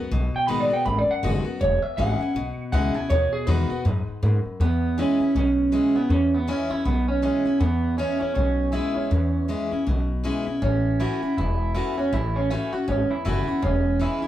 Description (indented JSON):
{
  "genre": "rockabilly",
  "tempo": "160 BPM",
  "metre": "4/4",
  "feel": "swing 60% on 8ths",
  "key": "E major",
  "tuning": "A4 = 442 Hz",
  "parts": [
    { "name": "picked steel-string acoustic guitar", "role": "accompaniment", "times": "0.0-14.3 s", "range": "E2 to F#4", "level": "-28 LUFS", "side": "left 3 dB", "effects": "none" },
    { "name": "upright bass", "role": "bass", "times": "0.1-14.3 s", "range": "E1 to G#2", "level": "-24 LUFS", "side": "equal", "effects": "none" },
    { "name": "electric guitar through a small old amp", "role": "melody", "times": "0.4-14.3 s", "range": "B3 to B5", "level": "-24 LUFS", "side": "right 2 dB", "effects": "none" }
  ],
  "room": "light reverb",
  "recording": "band playing live in one room",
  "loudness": "-21 LUFS",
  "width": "side -12 dB against mid",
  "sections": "0.0-4.6 A section; 4.6-14.3 B section",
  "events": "clean electric guitar solo 0.0-4.6",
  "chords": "0.0 B6; 1.6 E6; 3.1 B6; 4.6 E6; 10.6 A6; 13.6 E6"
}